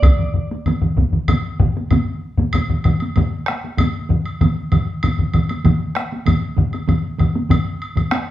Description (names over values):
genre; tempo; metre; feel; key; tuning
japanese traditional, taiko drum ensemble; 96 BPM; 4/4; straight; unclear; A4 = 440 Hz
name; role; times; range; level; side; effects
vintage hollow-body jazz guitar; melody; 0.0-1.9 s; D5; -28 LUFS; right 6 dB; none
solo taiko drums; percussion; 0.0-8.3 s; none; -18 LUFS; left 2 dB; none
solo taiko drums; percussion; 0.0-8.3 s; none; -23 LUFS; right 4 dB; none
taiko ensemble; percussion; 0.0-8.3 s; none; -25 LUFS; right 1 dB; none
taiko ensemble; percussion; 0.0-1.7 s; none; -16 LUFS; right 1 dB; none
woodblock; percussion; 0.0-8.3 s; none; -29 LUFS; right 1 dB; none
room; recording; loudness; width
wet large studio reverb, RT60 0.9 s; band playing live in one room; -16 LUFS; side -13 dB against mid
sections
0.0-2.5 A section; 2.5-8.3 B section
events
none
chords
none